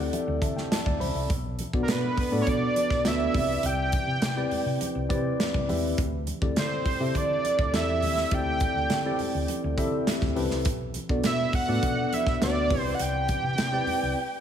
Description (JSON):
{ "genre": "polished 1980s jazz-funk pop", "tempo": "103 BPM", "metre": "4/4", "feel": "straight", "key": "unclear", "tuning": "A4 = 439 Hz", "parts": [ { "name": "fat analog lead", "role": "melody", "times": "0.0-14.4 s", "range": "Bb4 to G5", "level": "-28 LUFS", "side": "right 2 dB", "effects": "slapback echo" }, { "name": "tine electric piano", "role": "accompaniment", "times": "0.0-14.2 s", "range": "B3 to B5", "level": "-29 LUFS", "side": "left 2 dB", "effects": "analog chorus, slapback echo" }, { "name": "hollow-body short-scale fingered electric bass", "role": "bass", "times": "0.0-14.1 s", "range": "B1 to D3", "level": "-31 LUFS", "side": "equal", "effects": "none" }, { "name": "modern studio drum kit", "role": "drums", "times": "0.1-14.0 s", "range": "hi-hat, kick drum, snare drum", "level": "-30 LUFS", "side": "right 1 dB", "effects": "none" }, { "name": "congas", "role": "percussion", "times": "0.1-14.0 s", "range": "none", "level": "-41 LUFS", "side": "right 2 dB", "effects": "none" } ], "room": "moderate lush hall reverb, RT60 1.7 s, small room ambience", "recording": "big arena sound", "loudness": "-24 LUFS", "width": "side -9 dB against mid", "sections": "0.0-14.4 A section", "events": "tine electric piano fill 0.0-1.3; break 14.2", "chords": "0.0 D9sus4; 1.3 Bm7; 3.3 Cmaj9; 6.0 D9sus4; 10.7 Bm7; 12.7 Cmaj9", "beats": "0.13 0.71 | 1.30 1.88 2.47 3.05 | 3.64 4.22 4.81 5.39 | 5.98 6.56 7.15 7.73 | 8.32 8.90 9.49 10.07 | 10.66 11.24 11.83 12.41 | 13.00 13.58 14.16" }